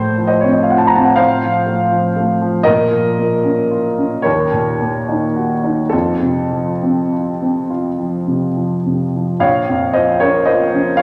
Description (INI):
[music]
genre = classical, romantic nocturne for solo piano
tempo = 33-41 BPM (dotted quarters)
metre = 6/8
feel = rubato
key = unclear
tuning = A4 = 440 Hz
[part]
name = warm upright piano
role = solo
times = 0.0-11.0 s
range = Bb1 to Bb5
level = -16 LUFS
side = equal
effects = none
[sound]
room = wet recital hall reverb, RT60 1.8 s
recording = none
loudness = -16 LUFS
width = mono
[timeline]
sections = 0.0-11.0 A section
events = none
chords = 0.0 F/A; 2.7 Bbm; 4.2 Ebm7; 5.9 F; 9.4 Bbm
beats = 1.19 | 2.66 4.25 | 5.93 7.71 | 9.43 11.01